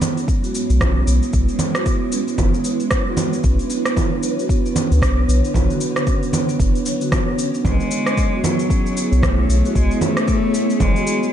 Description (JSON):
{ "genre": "organic downtempo", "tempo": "114 BPM", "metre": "4/4", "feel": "swing 59% on 16ths", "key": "B dorian", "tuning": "A4 = 440 Hz", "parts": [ { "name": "granular cloud pad", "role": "sustained chords", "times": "0.2-11.3 s", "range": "D3 to C#5", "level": "-26 LUFS", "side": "left 1 dB", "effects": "built-in reverb, sidechain pumping" }, { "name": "marimba with soft mallets", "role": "arpeggios", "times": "0.0-11.3 s", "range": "F#3 to F#4", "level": "-23 LUFS", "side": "right 3 dB", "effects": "low-pass filter, tape echo" }, { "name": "electronic congas, shaker and rim click", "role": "drums", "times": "0.0-11.3 s", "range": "none", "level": "-23 LUFS", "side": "right 2 dB", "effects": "none" }, { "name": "electronic kick drum", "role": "drums", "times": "0.3-10.9 s", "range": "none", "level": "-20 LUFS", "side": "equal", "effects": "none" }, { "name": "round analog bass", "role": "bass", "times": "0.7-10.9 s", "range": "F#1 to D2", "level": "-17 LUFS", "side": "equal", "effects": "sidechain pumping" }, { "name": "rich cello", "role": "melody", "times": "7.7-11.3 s", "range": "F#3 to A3", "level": "-22 LUFS", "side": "left 2 dB", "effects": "ping-pong delay" } ], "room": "light reverb", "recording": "dark, warm production, nothing above 11.0 kHz", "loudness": "-16 LUFS", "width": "side -10 dB against mid", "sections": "0.0-11.3 A section", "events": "none", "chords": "0.0 C#m7/B; 3.4 Bmadd9; 7.7 Amaj7/B" }